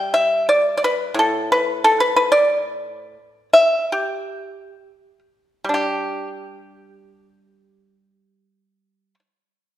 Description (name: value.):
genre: chinese traditional, Chinese solo plucked strings.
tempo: 56-91 BPM.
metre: 2/4.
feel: rubato.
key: G gong mode.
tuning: A4 = 438 Hz.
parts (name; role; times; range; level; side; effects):
pipa; solo; 0.0-9.2 s; A2 to G5; -16 LUFS; equal; none.
room: moderate scoring stage reverb, RT60 1.6 s.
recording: recorded in a church or concert hall.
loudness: -16 LUFS.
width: side -12 dB against mid.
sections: 0.0-5.7 A section; 5.7-9.8 B section.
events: slowing down 2.5-5.7.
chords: none.